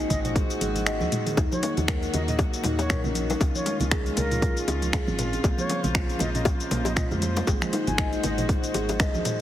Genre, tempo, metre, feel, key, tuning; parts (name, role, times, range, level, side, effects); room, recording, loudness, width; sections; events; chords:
afro house; 118 BPM; 4/4; swing 57% on 16ths; Eb dorian; A4 = 442 Hz
dark studio string section; sustained chords; 0.0-9.4 s; Db3 to C5; -34 LUFS; left 2 dB; sidechain pumping
kalimba; arpeggios; 0.0-9.2 s; F3 to Eb5; -30 LUFS; equal; sidechain pumping, tape echo
woody FM bass; bass; 0.0-9.2 s; Ab1 to F2; -30 LUFS; equal; sidechain pumping
bright reedy bansuri; melody; 0.1-8.5 s; Bb4 to Ab5; -35 LUFS; equal; tape echo
afro-pop drum kit; drums; 0.1-9.4 s; finger snaps, hi-hat, shaker, toms; -30 LUFS; equal; overdrive
electronic kick drum; drums; 0.1-9.1 s; -26 LUFS; equal; overdrive
congas; percussion; 0.1-9.2 s; -34 LUFS; right 4 dB
bongos; percussion; 1.4-9.4 s; -32 LUFS; left 5 dB
light reverb, small room ambience; heavily compressed radio sound, multiband compression; -23 LUFS; side -12 dB against mid
0.0-9.4 A section
kick drops out 0.9-1.4; drum fill 1.1
0.0 Ab7; 1.4 Ebm; 3.4 Dbadd9; 5.4 Bbmadd9; 7.5 Ab7